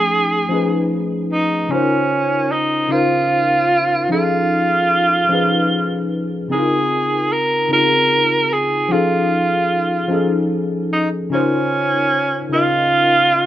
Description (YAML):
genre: R&B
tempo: 50 BPM (dotted quarters)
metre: 6/8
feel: straight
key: Db major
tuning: A4 = 440 Hz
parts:
  - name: breathy tenor saxophone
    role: melody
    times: 0.0-13.5 s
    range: Db4 to Bb4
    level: -16 LUFS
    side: right 2 dB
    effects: none
  - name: tine electric piano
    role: accompaniment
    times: 0.0-13.5 s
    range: Db3 to Eb5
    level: -19 LUFS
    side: left 2 dB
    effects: analog chorus
room: moderate studio reverb, RT60 0.6 s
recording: rough home demo mix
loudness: -15 LUFS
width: side -12 dB against mid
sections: 0.0-13.5 A section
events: none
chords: 0.0 F7alt; 1.7 Dbmaj13; 4.1 F7alt; 6.5 Dbmaj13; 8.9 F7alt; 11.3 Dbmaj13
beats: 0.51 | 1.71 2.91 | 4.11 5.31 | 6.51 7.71 | 8.91 10.11 | 11.31 12.51